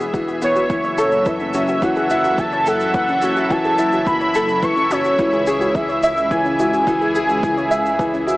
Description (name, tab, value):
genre	piano and strings electronica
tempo	107 BPM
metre	4/4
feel	straight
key	F# minor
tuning	A4 = 441 Hz
part	lush unison pad	sustained chords	0.0-8.4 s	C#3 to E5	-25 LUFS	equal	chorus, phaser, sidechain pumping
part	soft round pluck	arpeggios	0.0-8.4 s	C#4 to C#5	-27 LUFS	equal	chorus, sidechain pumping, digital delay
part	clear upright piano	riff	0.0-8.4 s	E3 to E5	-20 LUFS	equal	none
part	dark detuned saw bass	bass	0.0-8.4 s	E1 to C#2	-29 LUFS	equal	tube saturation, sidechain pumping
part	shaker	drums	0.0-8.4 s	none	-41 LUFS	left 1 dB	overdrive
part	electronic kick drum	drums	0.1-8.1 s	none	-26 LUFS	equal	overdrive
part	warm velvety synth lead	melody	0.4-8.4 s	C#5 to C#6	-20 LUFS	equal	chorus
room	moderate huge ambient reverb, RT60 5.1 s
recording	small speaker sound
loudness	-15 LUFS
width	side -19 dB against mid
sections	0.0-8.4 A section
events	none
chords	0.0 E; 0.7 F#m7; 5.2 C#m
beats	0.14 | 0.70 1.26 1.83 2.39 | 2.95 3.51 4.07 4.63 | 5.19 5.75 6.31 6.87 | 7.43 7.99